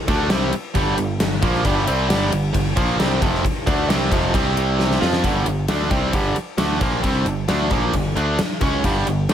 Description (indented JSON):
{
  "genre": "hard rock",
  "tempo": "134 BPM",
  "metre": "4/4",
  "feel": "straight",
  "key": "unclear",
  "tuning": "A4 = 441 Hz",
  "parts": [
    { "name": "distorted electric guitar", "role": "riff", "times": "0.1-9.3 s", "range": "F2 to F4", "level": "-21 LUFS", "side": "right 1 dB", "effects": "overdrive" },
    { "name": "modern bright picked electric bass", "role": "bass", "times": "0.1-9.3 s", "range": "F1 to F2", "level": "-23 LUFS", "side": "equal", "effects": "none" },
    { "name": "gated 80s drum kit", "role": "drums", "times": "0.1-9.3 s", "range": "kick drum, ride cymbal, snare drum", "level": "-22 LUFS", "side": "equal", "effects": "none" }
  ],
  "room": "light reverb, small room ambience",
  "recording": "none",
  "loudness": "-17 LUFS",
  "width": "side -9 dB against mid",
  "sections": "0.0-5.2 A section; 5.2-9.3 B section",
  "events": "drum fill 4.8-5.2",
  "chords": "0.0 G5; 4.3 C5; 5.0 F5; 5.2 G5"
}